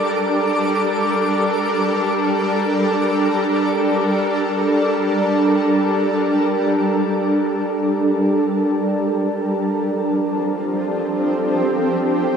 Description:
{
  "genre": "ambient",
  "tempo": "free time",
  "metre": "none",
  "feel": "none",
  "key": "G minor",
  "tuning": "A4 = 440 Hz",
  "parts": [
    { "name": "shimmering ambient pad", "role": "sustained chords", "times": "0.0-12.4 s", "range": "F3 to Bb4", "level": "-17 LUFS", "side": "equal", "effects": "chorus, built-in reverb" },
    { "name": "twinkling granular texture", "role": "texture", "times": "0.0-6.3 s", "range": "D6", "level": "-28 LUFS", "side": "left 1 dB", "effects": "built-in reverb" }
  ],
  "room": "wet huge ambient reverb, RT60 8.5 s",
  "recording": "in a vast, echoing space, studio ambience",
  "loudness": "-16 LUFS",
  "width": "side -7 dB against mid",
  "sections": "0.0-6.3 A section; 6.3-12.4 B section",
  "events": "none",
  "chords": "0.0 Gm; 9.4 Fadd9"
}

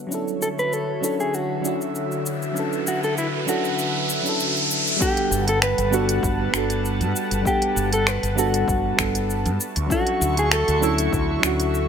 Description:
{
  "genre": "sunset chillout",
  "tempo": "98 BPM",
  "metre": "4/4",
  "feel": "swing 54% on 16ths",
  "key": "G lydian",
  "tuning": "A4 = 440 Hz",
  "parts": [
    { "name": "airy breathy pad", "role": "sustained chords", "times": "0.0-11.9 s", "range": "D3 to C#6", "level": "-28 LUFS", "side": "equal", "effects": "chorus" },
    { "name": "mellow FM electric piano", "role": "accompaniment", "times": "0.1-11.9 s", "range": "F#3 to F#5", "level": "-26 LUFS", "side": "moving between left 3 dB and right 5 dB", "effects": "chorus, auto-pan, tape echo" },
    { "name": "deep house drum kit", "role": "drums", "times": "0.1-11.9 s", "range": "cabasa, finger snaps, hi-hat", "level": "-25 LUFS", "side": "equal", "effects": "none" },
    { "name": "riser", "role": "sound effects", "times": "2.1-5.0 s", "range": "none", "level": "-26 LUFS", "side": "right 1 dB", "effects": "none" },
    { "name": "mellow electric guitar", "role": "melody", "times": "0.4-11.9 s", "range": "E4 to B4", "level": "-25 LUFS", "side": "left 1 dB", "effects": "spring reverb, tape echo" },
    { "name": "electronic kick drum", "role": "drums", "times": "5.0-11.3 s", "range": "none", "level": "-27 LUFS", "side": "equal", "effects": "none" },
    { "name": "mellow fretless electric bass", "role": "bass", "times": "5.3-11.9 s", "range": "G1 to G2", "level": "-25 LUFS", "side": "equal", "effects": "none" }
  ],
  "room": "moderate plate reverb, RT60 2.7 s",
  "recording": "none",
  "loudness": "-20 LUFS",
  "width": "side -7 dB against mid",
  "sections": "0.0-5.0 A section; 5.0-11.9 B section",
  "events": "riser 2.1-5.0",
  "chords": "0.0 Dmaj9; 5.0 Gmaj9; 9.6 Dmaj9"
}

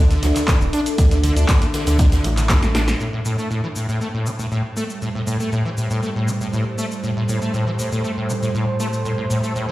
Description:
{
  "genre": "acid house",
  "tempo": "119 BPM",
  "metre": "4/4",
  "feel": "straight",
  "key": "A minor",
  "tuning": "A4 = 443 Hz",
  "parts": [
    { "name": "acid bass, saw", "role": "riff", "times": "0.0-9.7 s", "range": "A2 to D4", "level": "-23 LUFS", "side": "equal", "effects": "ensemble chorus, cassette tape, sidechain pumping, tape echo" },
    { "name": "round analog bass", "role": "bass", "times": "0.0-3.0 s", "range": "D1 to D2", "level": "-19 LUFS", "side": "equal", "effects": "tube saturation, sidechain pumping" },
    { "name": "deep dark ambient pad", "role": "texture", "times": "0.0-9.7 s", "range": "D4 to C6", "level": "-29 LUFS", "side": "equal", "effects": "chorus, built-in reverb, sidechain pumping" },
    { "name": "punchy analog drum machine", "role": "drums", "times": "0.1-9.7 s", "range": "cabasa, handclaps, hi-hat, snare drum", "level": "-27 LUFS", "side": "equal", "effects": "none" },
    { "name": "snare drum and shaker", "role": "drums", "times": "0.1-2.9 s", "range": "none", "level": "-33 LUFS", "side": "equal", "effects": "sidechain pumping on hats, high-pass filter on hats, high-pass filter on snare, sidechain pumping on perc, high-pass filter on perc, high-pass filter on room" },
    { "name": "electronic kick drum", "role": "drums", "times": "0.5-2.6 s", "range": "none", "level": "-16 LUFS", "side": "equal", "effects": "none" },
    { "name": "warm analog pad", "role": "sustained chords", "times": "3.0-9.7 s", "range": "A2 to C5", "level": "-25 LUFS", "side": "right 1 dB", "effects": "chorus, sidechain pumping" }
  ],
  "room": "light reverb",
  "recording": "played on a big sound system in a bare room, stone room reverb",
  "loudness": "-18 LUFS",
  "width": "side -16 dB against mid",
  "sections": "0.0-3.0 A section; 3.0-9.7 B section",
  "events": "drop 0.0-3.0; drum fill 2.5-3.0; filter sweep on analog synth pad 3.0-9.7",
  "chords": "0.0 D5; 3.0 Am7"
}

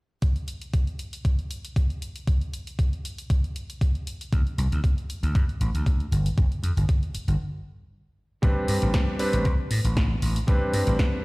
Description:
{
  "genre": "nu-disco, nu disco",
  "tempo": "117 BPM",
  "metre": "4/4",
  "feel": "swing 54% on 16ths",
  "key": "A minor",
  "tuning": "A4 = 440 Hz",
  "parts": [
    { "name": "electronic kick drum", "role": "drums", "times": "0.2-11.1 s", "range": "none", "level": "-22 LUFS", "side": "equal", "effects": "none" },
    { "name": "house drum kit", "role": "drums", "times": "0.2-11.1 s", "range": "hi-hat, snare drum", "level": "-35 LUFS", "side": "equal", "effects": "none" },
    { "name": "vintage slap bass", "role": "bass", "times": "4.3-10.9 s", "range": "G1 to A2", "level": "-24 LUFS", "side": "equal", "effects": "tube saturation, sidechain pumping" },
    { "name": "clear electric grand piano", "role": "accompaniment", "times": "8.4-11.2 s", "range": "G3 to B4", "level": "-27 LUFS", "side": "equal", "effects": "sidechain pumping, low-pass filter, digital delay" }
  ],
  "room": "digital ambience",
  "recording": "played on a big sound system in a bare room, large studio reverb",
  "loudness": "-23 LUFS",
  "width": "side -25 dB against mid",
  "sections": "0.2-8.4 A section; 8.4-11.2 B section",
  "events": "stop 7.4-8.4",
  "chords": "0.2 N.C.; 4.1 D5; 6.1 N.C.; 8.4 Am11"
}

